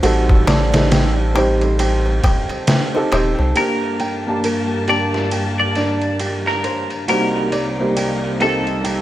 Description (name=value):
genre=trip hop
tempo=68 BPM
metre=4/4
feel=swing 60% on 16ths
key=G minor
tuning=A4 = 439 Hz
part: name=warm upright piano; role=accompaniment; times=0.0-9.0 s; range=G3 to A5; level=-21 LUFS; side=right 1 dB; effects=harmonic tremolo, tape echo
part: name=flamenco guitar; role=arpeggios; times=0.0-9.0 s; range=D4 to G5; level=-25 LUFS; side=right 2 dB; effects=low-pass filter, tape echo
part: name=soft dub sub bass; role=bass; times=0.0-3.5 s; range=Eb1 to C2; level=-18 LUFS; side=equal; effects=none
part: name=trip hop sampler-style drum kit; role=drums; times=0.0-9.0 s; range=kick drum, ride cymbal, snare drum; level=-21 LUFS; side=equal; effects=overdrive, high-pass filter on cymbals, vintage 12-bit sampler grit, high-pass filter on snare, high-pass filter on kick, high-pass filter on room
part: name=darbuka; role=percussion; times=0.0-3.5 s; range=none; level=-26 LUFS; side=left 3 dB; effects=none
part: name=clean electric guitar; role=melody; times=3.6-9.0 s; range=A4 to D5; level=-22 LUFS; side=left 1 dB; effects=wide subtle chorus, tape echo
part: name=dark chamber string section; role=sustained chords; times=3.6-9.0 s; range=C2 to A5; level=-24 LUFS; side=left 1 dB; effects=low-pass filter
room=little or no reverb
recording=none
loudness=-15 LUFS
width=side -14 dB against mid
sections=0.0-3.6 A section; 3.6-9.0 B section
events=filter sweep on string section 3.6-9.0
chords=0.0 Am7b5; 3.6 Gmadd9; 7.1 Cm7